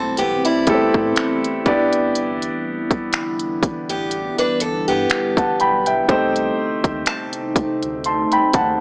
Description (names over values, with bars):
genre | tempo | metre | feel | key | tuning
contemporary R&B | 61 BPM | 4/4 | swing 54% on 16ths | G major | A4 = 439 Hz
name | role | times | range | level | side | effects
warm concert grand piano | accompaniment | 0.0-8.8 s | A3 to C6 | -19 LUFS | equal | none
deep dark ambient pad | sustained chords | 0.0-8.8 s | C3 to E4 | -25 LUFS | equal | chorus, built-in reverb
picked acoustic archtop guitar | arpeggios | 0.0-6.1 s | G3 to B4 | -20 LUFS | equal | none
sub bass with octave | bass | 0.0-8.8 s | G1 to A2 | -35 LUFS | equal | none
trap drum kit | drums | 0.2-8.8 s | finger snaps, hi-hat, kick drum | -20 LUFS | equal | none
nylon-string guitar | texture | 7.1-8.8 s | A5 | -33 LUFS | equal | analog delay
room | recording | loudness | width
studio ambience | dry, gritty hardware recording, transformer saturation, small speaker sound | -16 LUFS | side -38 dB against mid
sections
0.0-8.8 A section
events
none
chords
0.0 Am7; 1.7 G6; 6.1 Cm6